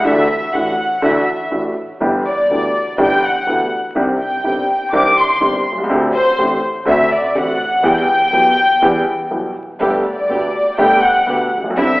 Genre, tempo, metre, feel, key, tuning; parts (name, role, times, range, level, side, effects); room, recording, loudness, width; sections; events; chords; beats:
tango; 123 BPM; 4/4; rubato; G major; A4 = 440 Hz
warm studio violin section; second line; 0.0-12.0 s; C5 to D6; -15 LUFS; left 1 dB
warm upright piano; accompaniment; 0.0-12.0 s; G1 to G4; -17 LUFS; equal
clear double bass; bass; 0.0-12.0 s; G1 to E2; -26 LUFS; equal
dark studio string section; stabs; 9.8-12.0 s; A3 to G4; -23 LUFS; equal
wet scoring stage reverb, RT60 1.6 s; recorded in a church or concert hall, vinyl crackle, telephone sound; -13 LUFS; side -20 dB against mid
0.0-12.0 A section
violin section solo 0.0-12.0
0.1 Dadd9; 2.0 G6; 4.0 Cmadd9; 5.9 D7sus4; 6.9 D7; 7.8 Em; 9.8 Gadd9
| 0.05 0.54 1.02 1.52 | 2.01 2.50 2.99 3.48 | 3.96 4.45 4.94 5.42 | 5.91 6.39 6.87 7.35 | 7.84 8.32 8.81 9.31 | 9.80 10.29 10.78 11.27 | 11.76